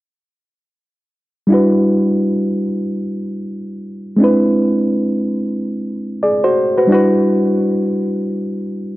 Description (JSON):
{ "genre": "R&B", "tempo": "free time", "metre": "none", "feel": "none", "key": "E minor", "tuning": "A4 = 444 Hz", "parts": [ { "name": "reed electric piano", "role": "solo", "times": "1.5-9.0 s", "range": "G3 to D5", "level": "-14 LUFS", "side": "equal", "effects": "none" } ], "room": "moderate plate reverb, RT60 3.1 s", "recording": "dark, warm production", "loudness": "-14 LUFS", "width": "side -17 dB against mid", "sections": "1.5-6.9 A section; 6.9-9.0 B section", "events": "none", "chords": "1.5 Em7; 4.2 E7b13; 6.9 Em7" }